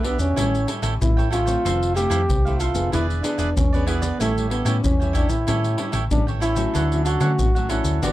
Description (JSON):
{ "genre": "samba and choro", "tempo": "94 BPM", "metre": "4/4", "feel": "straight", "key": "D major", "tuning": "A4 = 441 Hz", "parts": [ { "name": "breathy trombone", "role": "melody", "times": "0.0-8.1 s", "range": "A3 to G4", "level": "-24 LUFS", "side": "equal", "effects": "none" }, { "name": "cavaquinho", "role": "accompaniment", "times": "0.0-8.1 s", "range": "D4 to G5", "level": "-29 LUFS", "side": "right 6 dB", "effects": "none" }, { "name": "nylon-string guitar", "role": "accompaniment", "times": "0.0-8.1 s", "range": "G2 to G#4", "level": "-30 LUFS", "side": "left 3 dB", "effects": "none" }, { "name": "hollow-body short-scale fingered electric bass", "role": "bass", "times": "0.0-8.1 s", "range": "E1 to D3", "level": "-23 LUFS", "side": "equal", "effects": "none" }, { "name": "pandeiro, maracas and surdo", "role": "percussion", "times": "0.0-8.1 s", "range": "none", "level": "-24 LUFS", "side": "left 1 dB", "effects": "none" } ], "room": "light reverb", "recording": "dark, warm production", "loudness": "-18 LUFS", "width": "side -15 dB against mid", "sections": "0.0-8.1 A section", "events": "none", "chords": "0.4 A7; 1.7 Fmaj7; 2.9 E7; 4.2 A7; 6.8 Dmaj7" }